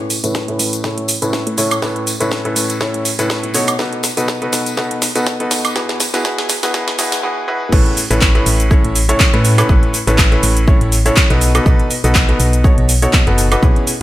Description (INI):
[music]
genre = piano house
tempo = 122 BPM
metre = 4/4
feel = swing 55% on 16ths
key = A major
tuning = A4 = 440 Hz
[part]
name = clear grand piano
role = riff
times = 0.0-13.9 s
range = A2 to C#5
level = -17 LUFS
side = equal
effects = sidechain pumping, low-pass filter, ping-pong delay
[part]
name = house drum kit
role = drums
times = 0.1-14.0 s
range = cabasa, crash cymbal, handclaps, hi-hat, snare drum, woodblock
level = -18 LUFS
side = right 1 dB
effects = high-pass filter on perc, studio reverb, high-pass filter on snare, high-pass filter on hats, high-pass filter on cymbals
[part]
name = tambourine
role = percussion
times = 0.1-7.2 s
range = none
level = -28 LUFS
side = left 3 dB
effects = none
[part]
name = solid FM bass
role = bass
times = 0.2-13.7 s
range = F#1 to A2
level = -16 LUFS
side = equal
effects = sidechain pumping, high-pass filter
[part]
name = electronic kick drum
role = drums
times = 0.3-13.7 s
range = none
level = -13 LUFS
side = equal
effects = high-pass filter on kick, studio reverb
[sound]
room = digital ambience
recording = high-pass filter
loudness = -12 LUFS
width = side -15 dB against mid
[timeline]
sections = 0.0-7.7 A section; 7.7-14.0 B section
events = build-up 0.0-7.7; drum fill 0.0-7.2; filter sweep on grand piano 0.0-7.7; drop 7.7-14.0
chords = 0.0 Aadd9; 3.5 B7; 5.8 E/B; 7.7 Aadd9; 11.4 B7